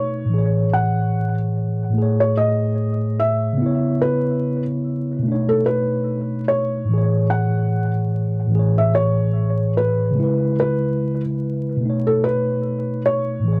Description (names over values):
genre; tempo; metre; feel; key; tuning
hip hop; 73 BPM; 4/4; swing 58% on 16ths; unclear; A4 = 440 Hz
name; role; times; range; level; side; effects
felt-muted upright piano; melody; 0.0-13.6 s; A4 to F#5; -25 LUFS; equal; cassette tape, analog delay
mellow tine electric piano; accompaniment; 0.0-13.6 s; A2 to C#5; -21 LUFS; equal; cassette tape
room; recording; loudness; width
moderate booth ambience, RT60 0.2 s; home recording on cassette, vinyl crackle; -20 LUFS; mono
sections
0.0-13.6 A section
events
none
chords
0.3 Amaj7; 3.6 C#m7; 5.2 B9; 6.9 Amaj7; 10.2 C#m7; 11.8 B9